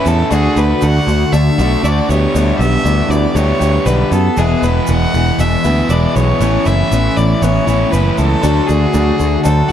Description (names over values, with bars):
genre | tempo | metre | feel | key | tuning
folk rock and heartland rock | 118 BPM | 4/4 | straight | unclear | A4 = 441 Hz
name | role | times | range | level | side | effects
clear fiddle | melody | 0.0-9.7 s | G#4 to F#5 | -19 LUFS | right 1 dB | none
picked twelve-string acoustic guitar | accompaniment | 0.0-9.7 s | E2 to F#4 | -20 LUFS | left 7 dB | none
overdriven semi-hollow guitar | riff | 0.0-9.7 s | E2 to G4 | -17 LUFS | right 1 dB | none
modern bright picked electric bass | bass | 0.1-9.7 s | E1 to F#2 | -14 LUFS | equal | none
egg shaker | percussion | 0.1-9.7 s | none | -34 LUFS | right 8 dB | none
room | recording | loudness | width
little or no reverb | dry, close 1970s-style studio recording | -11 LUFS | side -10 dB against mid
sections
0.0-9.7 A section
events
none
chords
0.3 D; 2.1 G6; 4.4 E; 6.4 Aadd9; 8.4 D